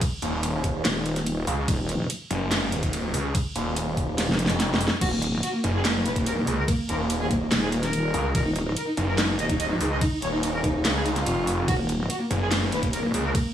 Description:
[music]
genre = heavy wobble dubstep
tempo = 144 BPM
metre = 4/4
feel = half-time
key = Eb minor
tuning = A4 = 440 Hz
[part]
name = dubstep drum kit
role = drums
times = 0.0-13.4 s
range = crash cymbal, handclaps, hi-hat, ride cymbal, snare drum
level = -29 LUFS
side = equal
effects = none
[part]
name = electronic kick drum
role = drums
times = 0.0-13.4 s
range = none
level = -27 LUFS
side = equal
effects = none
[part]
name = snarling distorted saw bass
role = bass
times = 0.2-13.3 s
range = Eb1 to Db2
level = -26 LUFS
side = equal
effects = distortion, overdrive
[part]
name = wobble bass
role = bass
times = 0.8-8.7, 11.7-12.1 s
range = Eb1 to F1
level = -26 LUFS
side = equal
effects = chorus, overdrive
[part]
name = dark cello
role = melody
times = 5.0-13.5 s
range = Bb3 to Eb5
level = -28 LUFS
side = equal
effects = digital delay
[sound]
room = light reverb, digital ambience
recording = small room ambience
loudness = -22 LUFS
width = side -10 dB against mid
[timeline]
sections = 0.0-13.5 A section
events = drum fill 4.2-5.0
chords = 0.0 Ebm

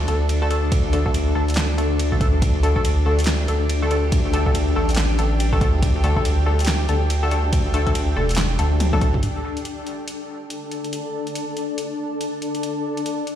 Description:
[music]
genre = deep dubstep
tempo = 141 BPM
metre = 4/4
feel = swing 60% on 16ths, half-time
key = unclear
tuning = A4 = 440 Hz
[part]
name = granular cloud pad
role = sustained chords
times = 0.0-13.4 s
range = D4 to A4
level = -26 LUFS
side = left 2 dB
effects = built-in reverb
[part]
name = saturated sub bass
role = bass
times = 0.0-9.2 s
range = E1 to D2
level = -20 LUFS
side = equal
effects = tube saturation
[part]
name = filtered dub chord stab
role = stabs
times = 0.1-9.1 s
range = D3 to A4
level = -26 LUFS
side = left 2 dB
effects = chorus, cassette tape, dub echo
[part]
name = deep house drum kit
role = drums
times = 0.1-13.4 s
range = handclaps, hi-hat, ride cymbal, snare drum, toms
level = -28 LUFS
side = equal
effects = none
[part]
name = electronic kick drum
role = drums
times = 0.7-9.1 s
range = none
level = -21 LUFS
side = equal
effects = none
[sound]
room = light reverb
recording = played on a big sound system in a bare room, stone room reverb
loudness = -18 LUFS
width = side -10 dB against mid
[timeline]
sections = 0.0-9.2 A section; 9.2-13.4 B section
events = drop 0.0-9.2; drum fill 8.8-9.2; filter sweep on ambient pad 9.2-13.4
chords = 0.0 D5

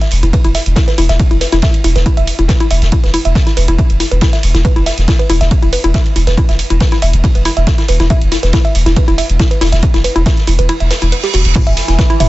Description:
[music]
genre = driving peak-time techno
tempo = 139 BPM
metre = 4/4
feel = straight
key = unclear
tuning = A4 = 441 Hz
[part]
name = woody wave-folded pluck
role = riff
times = 0.0-12.3 s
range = E4 to E5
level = -17 LUFS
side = equal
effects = chorus, sidechain pumping, dub echo
[part]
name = punchy analog drum machine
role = drums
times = 0.0-12.3 s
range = crash cymbal, hi-hat, toms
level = -22 LUFS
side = right 3 dB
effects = sidechain pumping on hats, sidechain pumping on toms, sidechain pumping on cymbals
[part]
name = vintage drum kit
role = drums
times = 0.0-12.3 s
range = ride cymbal, snare drum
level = -24 LUFS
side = right 1 dB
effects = high-pass filter on cymbals, high-pass filter on snare, high-pass filter on room
[part]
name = saturated sub bass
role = bass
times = 0.1-12.3 s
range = E1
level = -13 LUFS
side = equal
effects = overdrive, sidechain pumping, low-pass filter
[part]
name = electronic kick drum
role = drums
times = 0.3-12.1 s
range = none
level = -12 LUFS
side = equal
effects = none
[part]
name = reverse cymbal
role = sound effects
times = 10.8-11.6 s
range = none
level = -22 LUFS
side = right 6 dB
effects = none
[part]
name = overtone-sweeping drone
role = drone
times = 11.7-12.3 s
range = E3 to E4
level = -20 LUFS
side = right 2 dB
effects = chorus, built-in reverb, sidechain pumping
[sound]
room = little or no reverb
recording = nothing above 7.9 kHz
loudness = -10 LUFS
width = side -18 dB against mid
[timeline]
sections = 0.0-11.6 A section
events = kick drops out 10.7-11.6; reverse cymbal 10.8-11.6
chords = 0.0 E5

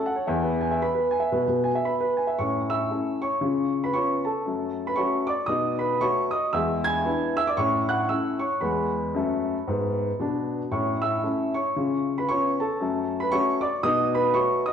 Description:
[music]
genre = jazz, stride piano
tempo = 115 BPM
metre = 4/4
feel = swing 60% on 8ths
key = A major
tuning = A4 = 439 Hz
[part]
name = warm upright piano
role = solo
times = 0.0-14.7 s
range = E2 to G#6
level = -22 LUFS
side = equal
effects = none
[sound]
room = wet recital hall reverb, RT60 1.7 s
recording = recorded in a church or concert hall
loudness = -22 LUFS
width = side -8 dB against mid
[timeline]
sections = 0.0-2.4 A section; 2.4-14.7 B section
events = none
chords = 0.3 E; 2.4 A; 3.4 C#7; 4.5 F#m; 5.5 B7; 6.5 E7; 7.6 A; 8.6 E; 10.7 A; 11.7 C#7; 12.8 F#m; 13.8 B7

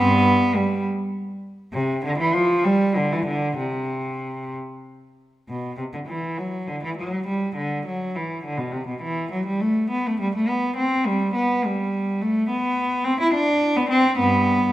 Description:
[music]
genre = classical, baroque-style suite movement for unaccompanied cello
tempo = 62-71 BPM (dotted quarters)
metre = 6/8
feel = rubato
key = C major, G major from 5.5 s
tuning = A4 = 440 Hz
[part]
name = rich cello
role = solo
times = 0.0-14.7 s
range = G2 to E4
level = -20 LUFS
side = equal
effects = none
[sound]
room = wet recital hall reverb, RT60 1.7 s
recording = none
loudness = -20 LUFS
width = side -14 dB against mid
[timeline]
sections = 0.0-5.5 A section; 5.5-14.7 A section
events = none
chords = none

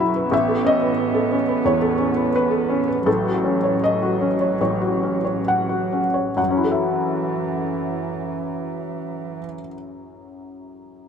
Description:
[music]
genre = neoclassical piano and strings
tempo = 66-93 BPM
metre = 4/4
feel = rubato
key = F# dorian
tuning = A4 = 440 Hz
[part]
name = muted cello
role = second line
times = 0.0-9.4 s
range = E3 to B3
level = -25 LUFS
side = right 8 dB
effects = none
[part]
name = felt-muted upright piano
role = accompaniment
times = 0.0-11.1 s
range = A1 to F#5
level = -20 LUFS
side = left 2 dB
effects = none
[sound]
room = light reverb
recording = none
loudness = -18 LUFS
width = side -7 dB against mid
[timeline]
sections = 0.0-6.4 A section; 6.4-9.9 B section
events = slowing down 0.0-6.4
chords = 0.3 Aadd9; 3.1 F#m/A; 6.4 F#m7

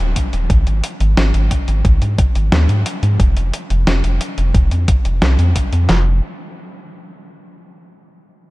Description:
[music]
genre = synthwave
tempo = 89 BPM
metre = 4/4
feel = straight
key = F minor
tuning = A4 = 440 Hz
[part]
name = round analog bass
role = bass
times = 0.0-6.2 s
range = Eb1 to Ab2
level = -14 LUFS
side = equal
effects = sidechain pumping
[part]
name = clean 12-bit digital drum machine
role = drums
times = 0.2-6.0 s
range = handclaps, kick drum, snare drum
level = -14 LUFS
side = equal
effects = none
[part]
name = clean 12-bit digital drum machine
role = drums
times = 0.2-5.9 s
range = hi-hat, snare drum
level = -22 LUFS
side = equal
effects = none
[sound]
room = light reverb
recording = none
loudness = -13 LUFS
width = side -20 dB against mid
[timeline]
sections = 0.0-5.9 A section; 5.9-8.5 B section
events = none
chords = none

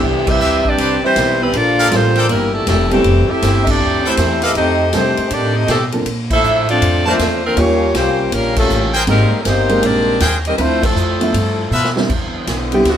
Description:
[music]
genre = jazz, big band swing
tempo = 159 BPM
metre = 4/4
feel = swing 65% on 8ths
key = C major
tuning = A4 = 440 Hz
[part]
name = clear saxophone section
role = melody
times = 0.0-12.0 s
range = E3 to E5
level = -16 LUFS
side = left 1 dB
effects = none
[part]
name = bright trombone section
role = second line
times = 0.0-12.0 s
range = Bb2 to E4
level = -22 LUFS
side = right 1 dB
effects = none
[part]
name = upright bass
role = bass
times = 0.0-13.0 s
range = E1 to C3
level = -19 LUFS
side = equal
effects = none
[part]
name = swinging big-band drum kit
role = drums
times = 0.3-13.0 s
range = crash cymbal, hi-hat, kick drum, ride cymbal, snare drum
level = -22 LUFS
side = equal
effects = none
[part]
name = brilliant trumpet section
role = stabs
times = 0.4-11.9 s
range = F4 to A5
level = -20 LUFS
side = equal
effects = none
[part]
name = warm baby grand piano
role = accompaniment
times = 1.9-12.8 s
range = F3 to Bb4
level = -20 LUFS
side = right 2 dB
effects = none
[part]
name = clear saxophone section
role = sustained chords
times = 12.1-13.0 s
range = D3 to E4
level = -24 LUFS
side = left 1 dB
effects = none
[part]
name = breathy alto saxophone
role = melody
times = 12.7-13.0 s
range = F#4 to G4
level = -13 LUFS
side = equal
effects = none
[sound]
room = moderate studio reverb, RT60 0.9 s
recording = band playing live in one room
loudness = -13 LUFS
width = side -9 dB against mid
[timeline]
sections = 0.0-12.1 A section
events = band accent 0.2, 3.6, 6.3, 8.5, 10.8; drum fill 11.7-12.1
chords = 0.0 Cmaj7; 1.5 Gm9; 2.3 C13; 3.0 Fmaj9; 4.6 F13; 6.1 Bbmaj9; 7.6 Eb9; 9.1 Abmaj9; 10.6 Dm9; 11.3 G13; 12.1 Cmaj9

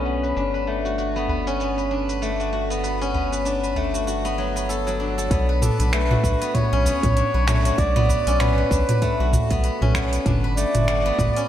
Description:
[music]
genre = organic downtempo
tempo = 97 BPM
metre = 4/4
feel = swing 58% on 16ths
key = B minor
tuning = A4 = 440 Hz
[part]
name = steel-string zither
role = arpeggios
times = 0.0-11.5 s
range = F#3 to B4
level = -24 LUFS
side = left 1 dB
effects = analog delay
[part]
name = round analog bass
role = bass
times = 0.0-11.3 s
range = G1 to B1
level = -24 LUFS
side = equal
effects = tube saturation
[part]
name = bronze singing bowl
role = texture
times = 0.0-5.3 s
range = A4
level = -44 LUFS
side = left 7 dB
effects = none
[part]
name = organic electronic drum kit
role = drums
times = 0.2-11.5 s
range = cabasa, finger snaps, hi-hat, toms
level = -24 LUFS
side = right 1 dB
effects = none
[part]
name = udu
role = percussion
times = 1.3-11.3 s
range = none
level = -28 LUFS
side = right 1 dB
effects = none
[part]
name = electronic kick drum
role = drums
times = 5.3-11.3 s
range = none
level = -25 LUFS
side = equal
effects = none
[part]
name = trumpet with bucket mute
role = melody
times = 5.6-11.5 s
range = A4 to D5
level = -25 LUFS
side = equal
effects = vintage 12-bit sampler grit, analog delay
[sound]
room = wet lush hall reverb, RT60 1.9 s, small room ambience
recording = dreamy mix soaked in reverb, low-pass filter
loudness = -19 LUFS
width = side -11 dB against mid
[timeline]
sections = 0.0-5.3 A section; 5.3-11.5 B section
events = filter sweep 0.0-5.3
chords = 0.4 Gadd9; 5.3 Bm; 10.3 Gadd9

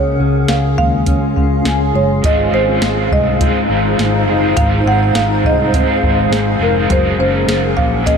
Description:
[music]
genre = dream pop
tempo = 103 BPM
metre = 4/4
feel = straight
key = Ab mixolydian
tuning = A4 = 440 Hz
[part]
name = marimba with medium mallets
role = melody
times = 0.0-8.2 s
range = Bb4 to Gb5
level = -19 LUFS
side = right 1 dB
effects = tape echo
[part]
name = granular cloud pad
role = sustained chords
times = 0.0-8.2 s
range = Db4 to Gb5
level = -18 LUFS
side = left 1 dB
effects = built-in reverb
[part]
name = mellow electric guitar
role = arpeggios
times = 0.0-8.2 s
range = Ab2 to Ab4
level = -19 LUFS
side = left 3 dB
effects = wide subtle chorus, tape echo
[part]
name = vintage muted fingered electric bass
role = bass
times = 0.0-8.2 s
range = F1 to Eb2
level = -19 LUFS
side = equal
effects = none
[part]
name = soft vintage rhythm box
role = drums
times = 0.5-8.2 s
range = hi-hat, kick drum, snare drum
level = -19 LUFS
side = equal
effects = none
[part]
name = raw garage guitar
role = accompaniment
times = 2.2-8.2 s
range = Ab2 to Ab4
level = -22 LUFS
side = right 4 dB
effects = overdrive, harmonic tremolo, lush chorus
[sound]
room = light reverb, digital ambience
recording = none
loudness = -12 LUFS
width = side -6 dB against mid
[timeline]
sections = 0.0-8.2 A section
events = none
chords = 0.0 Db; 2.2 Ab6; 6.9 Gbadd9

